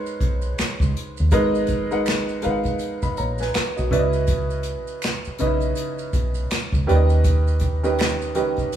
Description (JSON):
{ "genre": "R&B, neo-soul", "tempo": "81 BPM", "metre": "4/4", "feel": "swing 60% on 16ths", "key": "C# dorian", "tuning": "A4 = 439 Hz", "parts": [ { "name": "clear concert grand piano", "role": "accompaniment", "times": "0.0-8.8 s", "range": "C#3 to B5", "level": "-23 LUFS", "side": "right 2 dB", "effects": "none" }, { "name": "maracas and finger snaps", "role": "percussion", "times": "0.1-8.8 s", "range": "none", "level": "-38 LUFS", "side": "right 4 dB", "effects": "none" }, { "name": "deep dub fingered electric bass", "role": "bass", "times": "0.2-8.7 s", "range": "G#1 to D#2", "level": "-22 LUFS", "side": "equal", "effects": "none" }, { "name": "unplugged drum kit", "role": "drums", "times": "0.2-8.8 s", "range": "finger snaps, hi-hat, kick drum, snare drum", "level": "-25 LUFS", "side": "equal", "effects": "none" } ], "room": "moderate stone room reverb, RT60 1.3 s", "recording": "band playing live in one room, small room ambience", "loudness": "-19 LUFS", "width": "side -10 dB against mid", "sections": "0.0-8.8 A section", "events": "none", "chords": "0.0 G#m9; 3.9 C#m9; 6.9 D#7b13" }